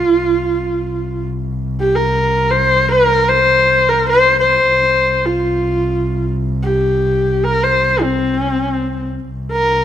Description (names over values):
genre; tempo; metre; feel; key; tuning
mongolian traditional; free time; none; none; unclear; A4 = 440 Hz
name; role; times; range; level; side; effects
rich horsehead fiddle; melody; 0.0-9.8 s; C4 to C5; -13 LUFS; equal; none
rich double bass; drone; 0.0-9.8 s; C2; -20 LUFS; right 1 dB; none
room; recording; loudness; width
light reverb; close, detailed microphones; -13 LUFS; side -10 dB against mid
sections
0.0-9.3 A section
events
none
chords
none